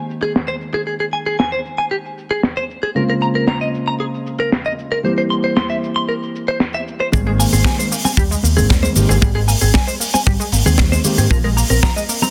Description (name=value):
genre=nu-disco, nu disco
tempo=115 BPM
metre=4/4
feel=straight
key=Ab major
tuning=A4 = 440 Hz
part: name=dark concert grand piano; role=accompaniment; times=0.0-11.2 s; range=Db3 to G4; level=-24 LUFS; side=equal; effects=sidechain pumping, dub echo
part: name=tight funk drum kit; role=drums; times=0.1-12.3 s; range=hi-hat, shaker, snare drum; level=-22 LUFS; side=equal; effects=low-pass filter on hats, soft clipping on snare, low-pass filter on snare, low-pass filter on perc, low-pass filter on room
part: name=direct-recorded clean electric guitar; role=riff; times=0.2-12.3 s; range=G4 to C6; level=-23 LUFS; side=equal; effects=lush chorus, dub echo
part: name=analog pluck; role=arpeggios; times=7.1-12.3 s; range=F3 to C4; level=-28 LUFS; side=equal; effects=chorus, sidechain pumping, tape echo
part: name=picked electric bass with an envelope filter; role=bass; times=7.1-11.8 s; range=Ab1 to Ab2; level=-18 LUFS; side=equal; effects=sidechain pumping
part: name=kick drum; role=drums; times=7.1-11.9 s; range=none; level=-19 LUFS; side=equal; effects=none
part: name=congas and bongos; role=percussion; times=7.1-12.3 s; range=none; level=-28 LUFS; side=equal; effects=none
room=light reverb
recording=dense, heavily limited modern master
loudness=-17 LUFS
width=mono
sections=0.0-7.1 A section; 7.1-12.3 B section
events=drop 7.1-12.3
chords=0.0 Abadd9; 3.0 Bbm9; 5.0 C7; 7.1 Abmaj9; 11.3 Bb7sus2